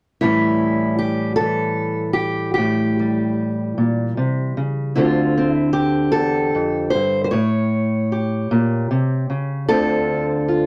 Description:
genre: acoustic country blues, solo or duo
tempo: 51 BPM (dotted quarters)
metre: 12/8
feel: straight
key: unclear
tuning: A4 = 440 Hz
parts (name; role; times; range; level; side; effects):
- fingerpicked steel-string acoustic guitar; solo; 0.2-10.7 s; D2 to C#5; -19 LUFS; equal; none
room: moderate studio reverb, RT60 0.6 s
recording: dark, warm production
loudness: -20 LUFS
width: mono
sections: 0.2-9.7 A section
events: none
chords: 0.2 A7; 5.0 Dm7; 7.3 A7#9; 9.7 Dm7

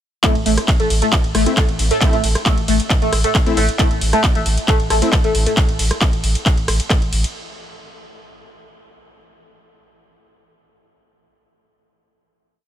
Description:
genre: driving peak-time techno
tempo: 135 BPM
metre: 4/4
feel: straight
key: A minor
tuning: A4 = 436 Hz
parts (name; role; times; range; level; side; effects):
- overdriven synth lead; riff; 0.2-5.5 s; A3; -21 LUFS; equal; phaser, tube saturation, lush chorus, sidechain pumping, tape echo
- rave stab; stabs; 0.2-5.1 s; A3 to E4; -26 LUFS; left 2 dB; chorus, built-in reverb, sidechain pumping, tape echo
- electronic kick drum; drums; 0.2-7.0 s; none; -18 LUFS; equal; none
- techno drum kit; drums; 0.2-7.3 s; handclaps, hi-hat, ride cymbal, rim click; -20 LUFS; equal; sidechain pumping on hats, sidechain pumping on cymbals
- saturated sub bass; bass; 0.4-7.2 s; A1; -20 LUFS; equal; tube saturation, sidechain pumping, low-pass filter
room: little or no reverb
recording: none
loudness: -14 LUFS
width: side -10 dB against mid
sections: 0.2-7.3 drop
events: drop 0.2-7.3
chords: 0.2 Am

